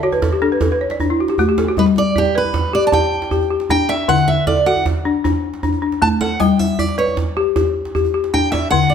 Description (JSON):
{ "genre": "west african traditional, West African string and xylophone music", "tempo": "104 BPM (dotted quarters)", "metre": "12/8", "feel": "straight", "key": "G lydian", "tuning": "A4 = 440 Hz", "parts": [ { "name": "balafon", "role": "arpeggios", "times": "0.0-8.9 s", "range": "D3 to D5", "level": "-17 LUFS", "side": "left 4 dB", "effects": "none" }, { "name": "djembe", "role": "percussion", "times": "0.0-8.9 s", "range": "none", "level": "-21 LUFS", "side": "right 3 dB", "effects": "none" }, { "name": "picked steel-string acoustic guitar", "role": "melody", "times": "1.8-8.9 s", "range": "G4 to A5", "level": "-18 LUFS", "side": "right 4 dB", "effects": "none" } ], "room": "moderate recital hall reverb, RT60 1.5 s", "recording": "none", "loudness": "-14 LUFS", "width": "side -7 dB against mid", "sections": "0.0-8.9 A section", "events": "balafon fill 0.0-1.8; steel-string acoustic guitar solo 0.0-8.9", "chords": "0.0 D; 1.8 G; 4.1 D; 6.4 G" }